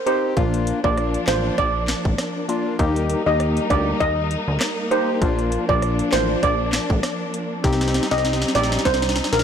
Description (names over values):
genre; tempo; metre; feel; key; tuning
dancehall; 99 BPM; 4/4; swing 56% on 16ths; Bb major; A4 = 439 Hz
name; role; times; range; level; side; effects
steel pan; melody; 0.1-9.4 s; Bb4 to Eb5; -23 LUFS; right 3 dB; ping-pong delay
percussive organ stab; accompaniment; 0.1-8.8 s; Bb3 to G4; -25 LUFS; left 4 dB; chorus
island pop drum kit; drums; 0.1-9.4 s; handclaps, hi-hat, kick drum, rim click, snare drum; -25 LUFS; equal; none
warm studio string section; sustained chords; 0.4-9.4 s; F3 to Eb4; -27 LUFS; equal; sidechain pumping
plucky analog bass; bass; 0.4-9.4 s; A1 to Eb2; -24 LUFS; equal; none
room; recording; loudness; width
light reverb; blown-out, overdriven recording, overdrive; -18 LUFS; side -8 dB against mid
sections
0.0-9.4 A section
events
drum fill 7.6-9.4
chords
0.4 Bb; 2.8 Eb; 5.2 Bb; 7.6 Cm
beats
| 0.37 0.97 1.58 2.19 | 2.79 3.40 4.00 4.61 | 5.22 5.82 6.43 7.04 | 7.64 8.25 8.85